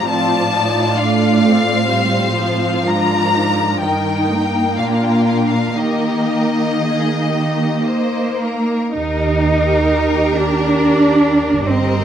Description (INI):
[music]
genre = classical, slow romantic movement for string orchestra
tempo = 50-69 BPM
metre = 3/4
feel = rubato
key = Eb major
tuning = A4 = 440 Hz
[part]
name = rich studio violin section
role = melody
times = 0.0-12.0 s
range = Bb4 to Bb5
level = -21 LUFS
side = left 4 dB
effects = none
[part]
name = warm studio violin section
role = second line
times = 0.0-12.0 s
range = Eb4 to D5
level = -23 LUFS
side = left 3 dB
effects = none
[part]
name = rich studio viola section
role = accompaniment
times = 0.0-12.0 s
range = Eb3 to G4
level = -19 LUFS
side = right 2 dB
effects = none
[part]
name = rich studio cello section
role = bass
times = 0.0-12.0 s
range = G2 to Eb4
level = -18 LUFS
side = right 2 dB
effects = none
[part]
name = warm studio double bass section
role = bass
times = 9.0-12.0 s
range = G1 to Eb2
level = -20 LUFS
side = right 3 dB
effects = none
[sound]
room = moderate scoring stage reverb, RT60 1.6 s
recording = close, detailed microphones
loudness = -14 LUFS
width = side -9 dB against mid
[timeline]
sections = 0.0-9.0 A section; 9.0-12.0 B section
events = none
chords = 0.1 F7/A; 2.9 Bb7/Ab; 3.8 Eb/G; 4.8 Bb; 5.8 Eb